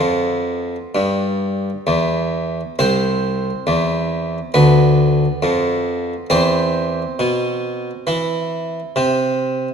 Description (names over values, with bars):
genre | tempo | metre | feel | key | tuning
classical, baroque-style suite movement for harpsichord | 67 BPM | 4/4 | rubato | C major | A4 = 440 Hz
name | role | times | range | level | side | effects
harpsichord | solo | 0.0-9.7 s | C2 to C4 | -16 LUFS | equal | none
room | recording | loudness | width
moderate scoring stage reverb, RT60 1.7 s | minimal, uncompressed stereo recording | -16 LUFS | side -7 dB against mid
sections
0.0-9.7 A section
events
none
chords
0.0 G7; 2.8 C; 4.6 Bdim/D; 6.3 C/E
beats
0.95 1.88 | 2.79 3.67 4.55 5.42 | 6.30 7.20 8.08 8.98